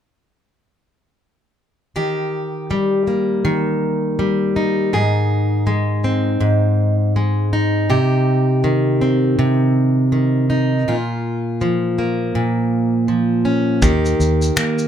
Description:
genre	acoustic pop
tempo	81 BPM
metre	4/4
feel	swing 60% on 16ths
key	unclear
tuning	A4 = 439 Hz
part	fingerpicked plugged-in steel-string acoustic guitar	accompaniment	2.0-14.9 s	Ab2 to Ab4	-16 LUFS	equal	none
part	vintage muted fingered electric bass	bass	13.8-14.9 s	Eb2 to Eb3	-19 LUFS	equal	none
part	modern studio drum kit	drums	13.8-14.9 s	finger snaps, kick drum, shaker	-21 LUFS	equal	none
room	moderate small room reverb, RT60 0.5 s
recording	none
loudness	-15 LUFS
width	side -9 dB against mid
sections	2.0-14.9 A section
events	none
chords	2.0 Eb; 4.9 Ab; 7.9 Cm; 10.9 Bbm; 13.8 Eb

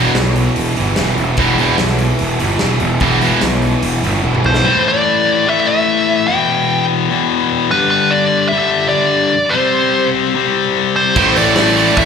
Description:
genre	hard rock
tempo	147 BPM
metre	4/4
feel	straight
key	E minor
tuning	A4 = 440 Hz
part	heavy high-gain guitar	riff	0.0-3.4, 11.2-12.1 s	E2 to A3	-16 LUFS	right 13 dB	distortion, slapback echo
part	high-gain distorted guitar	riff	0.0-12.1 s	E2 to C4	-15 LUFS	left 8 dB	distortion, slapback echo
part	tight distorted guitar	riff	0.0-4.6, 11.2-12.1 s	E2 to A3	-19 LUFS	right 1 dB	distortion, slapback echo
part	fuzz picked electric bass	bass	0.0-4.6, 11.2-12.1 s	E1 to B1	-17 LUFS	right 1 dB	overdrive
part	big rock drum kit	drums	0.1-4.6, 11.2-12.1 s	crash cymbal, hi-hat, kick drum, snare drum, toms	-20 LUFS	right 1 dB	none
part	nasal lead guitar with a parked wah	melody	4.5-12.1 s	B4 to G5	-15 LUFS	right 1 dB	overdrive, slapback echo, analog delay
room	light reverb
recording	live gig heard through the venue's PA, club reverb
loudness	-12 LUFS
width	side -6 dB against mid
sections	0.0-4.7 A section; 4.7-12.1 B section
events	drum fill 4.2-4.7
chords	0.0 E5; 4.7 A5; 6.3 Em; 7.7 G5; 9.5 C5; 11.2 A5

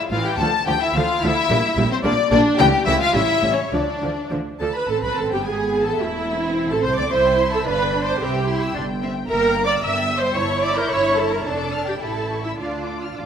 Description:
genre	quick classical-period movement for string orchestra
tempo	101-112 BPM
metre	2/4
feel	rubato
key	D minor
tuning	A4 = 439 Hz
part	warm symphonic violin section	melody	0.0-13.3 s	E4 to A6	-24 LUFS	left 6 dB	none
part	warm symphonic violin section	second line	0.1-13.2 s	C4 to E6	-26 LUFS	left 2 dB	none
part	warm symphonic viola section	accompaniment	0.1-13.2 s	E3 to E5	-22 LUFS	right 2 dB	none
part	clear symphonic double bass section	bass	0.1-13.3 s	E1 to D2	-27 LUFS	right 3 dB	none
part	warm studio cello section	bass	0.1-13.3 s	A2 to F4	-27 LUFS	right 2 dB	none
room	wet concert hall reverb, RT60 1.8 s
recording	none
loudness	-18 LUFS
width	side -8 dB against mid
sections	0.0-4.9 A section; 4.9-13.3 B section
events	none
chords	0.4 Dm; 1.5 Gm/Bb; 2.6 A7/C#; 3.1 A7; 3.7 Dm; 4.9 Am; 5.5 G#m; 6.0 Am/E; 7.1 C; 7.7 G7; 8.2 C; 9.3 Edim/G; 10.4 A7/G; 11.5 Dm/F; 12.0 A7; 12.6 Dm

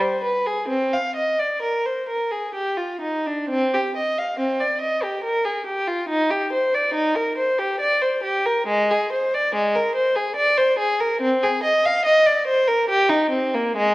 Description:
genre	classical, baroque-style suite movement for unaccompanied violin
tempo	61-72 BPM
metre	3/4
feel	rubato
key	C minor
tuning	A4 = 440 Hz
part	rich violin	solo	0.0-13.9 s	Ab3 to F5	-19 LUFS	equal	none
room	wet recital hall reverb, RT60 1.4 s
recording	worn, warbling old tape, cassette tape, warbly pitch drift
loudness	-19 LUFS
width	side -19 dB against mid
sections	0.0-3.5 A section; 3.5-13.9 B section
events	none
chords	none

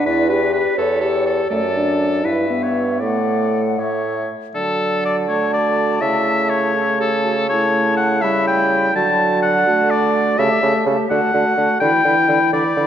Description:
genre	quick classical-period movement for wind quintet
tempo	82 BPM (dotted quarters)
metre	6/8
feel	rubato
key	D major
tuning	A4 = 440 Hz
part	concert flute	melody	0.0-12.9 s	C#5 to B5	-26 LUFS	left 5 dB	none
part	bright oboe	second line	0.0-12.9 s	A4 to A5	-19 LUFS	left 2 dB	none
part	mellow French horn	accompaniment	0.0-12.9 s	E3 to A4	-22 LUFS	equal	none
part	bright clarinet	accompaniment	0.1-12.9 s	E4 to D5	-26 LUFS	right 6 dB	none
part	clear bassoon	bass	0.1-12.9 s	E2 to D3	-21 LUFS	right 2 dB	none
room	wet concert hall reverb, RT60 2.1 s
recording	dark, warm production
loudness	-15 LUFS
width	side -9 dB against mid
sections	0.0-4.5 A section; 4.5-12.9 B section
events	none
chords	0.1 Em7; 0.8 A7/E; 1.5 D/F#; 2.2 Em/G; 3.0 D/A; 4.5 D; 6.0 A/C#; 7.5 A7/C#; 8.9 D; 10.4 A7/C#; 11.1 D; 11.8 Em7/D

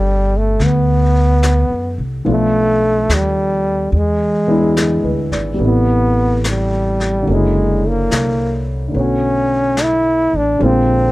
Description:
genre	jazz ballad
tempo	72 BPM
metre	4/4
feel	swing 67% on 8ths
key	unclear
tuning	A4 = 437 Hz
part	bright trombone	melody	0.0-11.1 s	G3 to E4	-16 LUFS	equal	none
part	warm upright piano	accompaniment	0.0-11.1 s	C3 to D5	-20 LUFS	equal	none
part	upright bass	bass	0.0-11.1 s	F#1 to F#2	-17 LUFS	equal	none
part	vintage brush drum kit	drums	0.6-11.1 s	brushed snare drum, hi-hat, snare drum	-24 LUFS	left 2 dB	none
room	little or no reverb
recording	close, detailed microphones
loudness	-13 LUFS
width	side -18 dB against mid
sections	0.0-11.1 A section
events	none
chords	0.0 Gmaj9; 2.3 Bm7b5; 3.9 E7; 5.6 Am9; 7.3 F#7b13; 8.9 Bm9; 10.6 Bb9

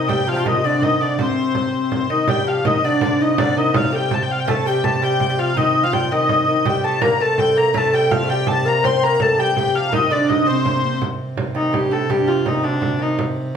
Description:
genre	medieval dance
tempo	110 BPM (dotted quarters)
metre	6/8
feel	straight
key	C dorian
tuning	A4 = 440 Hz
part	rich hurdy-gurdy	melody	0.0-13.2 s	D4 to C6	-20 LUFS	left 2 dB	none
part	breathy mellow bass recorder	second line	0.0-11.0 s	Bb3 to C5	-21 LUFS	left 3 dB	slapback echo
part	lute	second line	0.0-13.2 s	D2 to C4	-24 LUFS	right 4 dB	none
part	warm viola da gamba	drone	0.0-13.6 s	C3	-26 LUFS	right 2 dB	none
part	frame drum	percussion	0.1-13.5 s	none	-25 LUFS	right 4 dB	none
room	wet large studio reverb, RT60 0.8 s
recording	band playing live in one room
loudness	-16 LUFS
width	side -7 dB against mid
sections	0.0-2.3 A section; 2.3-11.0 A section; 11.0-13.6 B section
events	none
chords	none

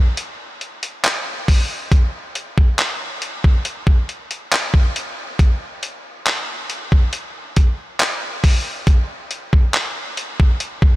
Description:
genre	R&B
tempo	69 BPM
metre	4/4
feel	straight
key	none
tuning	none
part	dusty soul sampler-style drum kit	drums	0.2-11.0 s	handclaps, hi-hat, kick drum	-16 LUFS	equal	none
room	light reverb, digital ambience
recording	none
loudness	-16 LUFS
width	side -18 dB against mid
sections	0.0-11.0 A section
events	none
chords	none

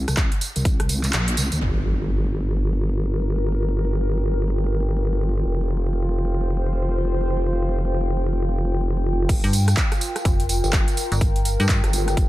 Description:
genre	bass house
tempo	125 BPM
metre	4/4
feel	swing 61% on 16ths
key	G minor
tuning	A4 = 441 Hz
part	vowel-sweep wobble bass	bass	0.0-12.3 s	F1 to D2	-22 LUFS	equal	chorus, overdrive, sidechain pumping
part	big-room dance drum kit	drums	0.1-1.6, 9.3-12.3 s	crash cymbal, handclaps, hi-hat, rim click, tambourine	-26 LUFS	right 1 dB	overdrive, low-pass filter on hats, low-pass filter on perc, low-pass filter on snare, low-pass filter on cymbals
part	electronic kick drum	drums	0.2-0.8, 9.3-12.3 s	none	-21 LUFS	equal	overdrive
part	impact	sound effects	1.6-3.5 s	none	-29 LUFS	equal	none
part	warbly tape-like pad	texture	2.7-12.3 s	F4 to G5	-28 LUFS	left 1 dB	chorus, built-in reverb, sidechain pumping
part	metallic FM bass	bass	9.4-11.8 s	F1 to G2	-20 LUFS	equal	tube saturation, sidechain pumping
room	little or no reverb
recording	none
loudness	-19 LUFS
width	side -16 dB against mid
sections	0.0-1.6 A section; 1.6-9.3 B section; 9.3-12.3 C section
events	kick drops out 1.1-1.6; band accent 1.1; impact 1.6-3.5; drop 9.3-12.3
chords	0.0 Bbsus2; 1.6 Gm7; 5.5 Fsus2

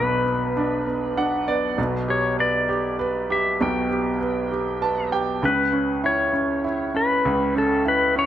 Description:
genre	pop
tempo	66 BPM (dotted quarters)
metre	6/8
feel	straight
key	unclear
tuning	A4 = 441 Hz
part	clean lap steel guitar	melody	0.0-8.3 s	A4 to G5	-23 LUFS	left 3 dB	none
part	clear grand piano	accompaniment	0.0-8.3 s	B1 to A5	-22 LUFS	right 2 dB	none
room	moderate echo chamber reverb, RT60 1.5 s, small room ambience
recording	none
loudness	-20 LUFS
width	side -11 dB against mid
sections	0.0-8.3 A section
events	grand piano fill 0.9-1.8, 4.5-5.4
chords	0.0 Bm; 1.8 Gadd9/B; 5.4 C#m7

